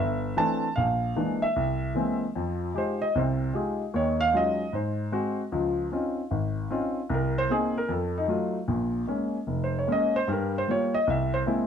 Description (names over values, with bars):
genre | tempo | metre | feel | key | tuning
jazz | 152 BPM | 4/4 | swing 67% on 8ths | F minor | A4 = 444 Hz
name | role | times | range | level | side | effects
warm baby grand piano | solo | 0.0-11.7 s | F1 to A5 | -24 LUFS | equal | none
room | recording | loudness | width
moderate club reverb, RT60 0.7 s | none | -25 LUFS | side -8 dB against mid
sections
0.0-2.4 A section; 2.4-11.7 B section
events
grand piano solo 2.4-11.7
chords
0.0 C69; 0.8 Bb7#11; 1.6 Caug7; 2.4 Fm9; 3.9 Ebm11; 4.7 Ab7; 5.5 Dbmaj9; 7.1 Cm7; 7.9 F7b9; 8.7 Bbm7; 10.3 Gm7b5; 11.1 Caug7